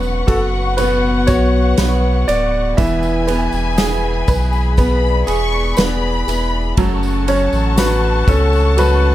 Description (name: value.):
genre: pop ballad.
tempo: 60 BPM.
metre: 4/4.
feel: straight.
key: unclear.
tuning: A4 = 441 Hz.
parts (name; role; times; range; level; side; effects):
warm studio violin section; second line; 0.0-9.1 s; F#5 to C#6; -25 LUFS; left 2 dB; plate reverb.
bright upright piano; accompaniment; 0.0-9.1 s; E3 to B4; -22 LUFS; right 4 dB; plate reverb.
muted symphonic string section; sustained chords; 0.0-9.1 s; G#4 to C#6; -26 LUFS; left 5 dB; plate reverb.
fingerpicked steel-string acoustic guitar; arpeggios; 0.0-9.1 s; F#2 to A4; -23 LUFS; left 3 dB; plate reverb.
saturated sub bass; bass; 0.0-9.1 s; D1 to C#2; -17 LUFS; equal; none.
tambourine; percussion; 0.0-9.0 s; none; -35 LUFS; right 4 dB; none.
impact; sound effects; 0.0-2.8 s; none; barely audible; none; none.
warm concert grand piano; melody; 0.3-9.1 s; A4 to E5; -20 LUFS; left 1 dB; plate reverb, digital delay.
unplugged drum kit; drums; 0.3-9.0 s; kick drum, ride cymbal, snare drum; -19 LUFS; equal; none.
room: light reverb.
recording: none.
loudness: -13 LUFS.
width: side -14 dB against mid.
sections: 0.0-9.1 A section.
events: impact 0.0-2.8.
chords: 0.0 Bsus2; 2.8 E; 6.8 F#m.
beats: 0.78 1.78 | 2.78 3.78 4.78 5.78 | 6.78 7.78 8.78.